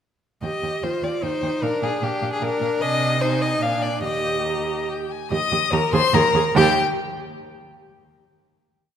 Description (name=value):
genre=quick classical-period movement for string quartet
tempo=138-154 BPM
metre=3/4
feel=rubato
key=Eb major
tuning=A4 = 439 Hz
part: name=rich violin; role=melody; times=0.4-6.8 s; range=F5 to Eb6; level=-26 LUFS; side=left 7 dB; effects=none
part: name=rich violin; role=second line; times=0.4-6.8 s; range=G4 to F5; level=-24 LUFS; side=left 3 dB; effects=none
part: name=rich viola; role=accompaniment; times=0.4-6.8 s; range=D4 to Ab4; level=-26 LUFS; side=right 3 dB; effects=none
part: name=rich cello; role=bass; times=0.4-6.8 s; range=Eb2 to C3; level=-25 LUFS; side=right 4 dB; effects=none
room=moderate concert hall reverb, RT60 2.2 s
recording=none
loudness=-19 LUFS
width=side -8 dB against mid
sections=0.4-5.3 A section; 5.3-6.6 coda; 6.6-7.8 final chord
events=none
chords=0.4 Eb; 1.6 Bb; 2.8 Ab/C; 3.6 Bb7; 4.0 Eb; 5.9 Abadd9; 6.6 Eb